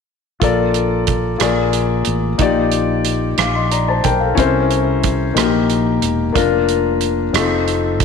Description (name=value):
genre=slow gospel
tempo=61 BPM (dotted quarters)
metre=6/8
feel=straight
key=Bb major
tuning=A4 = 440 Hz
part: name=warm concert grand piano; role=accompaniment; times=0.4-8.0 s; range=Bb2 to D6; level=-16 LUFS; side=left 6 dB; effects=none
part: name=mellow fretless electric bass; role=bass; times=0.4-8.0 s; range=E1 to C2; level=-21 LUFS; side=right 3 dB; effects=analog chorus
part: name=natural country drum kit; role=drums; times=0.4-8.0 s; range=hi-hat, kick drum, rim click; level=-20 LUFS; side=right 7 dB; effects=none
room=moderate echo chamber reverb, RT60 2.3 s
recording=1960s-style stereo with parts hard left and right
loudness=-14 LUFS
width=side -6 dB against mid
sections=0.4-8.0 A section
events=none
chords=0.4 Bbmaj7; 1.4 Bb7; 2.4 Ebmaj9/Bb; 4.4 C7b9; 5.4 Eb/Bb; 6.4 Bb/F; 7.3 F7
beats=| 0.42 1.41 | 2.40 3.39 | 4.38 5.36 | 6.35 7.34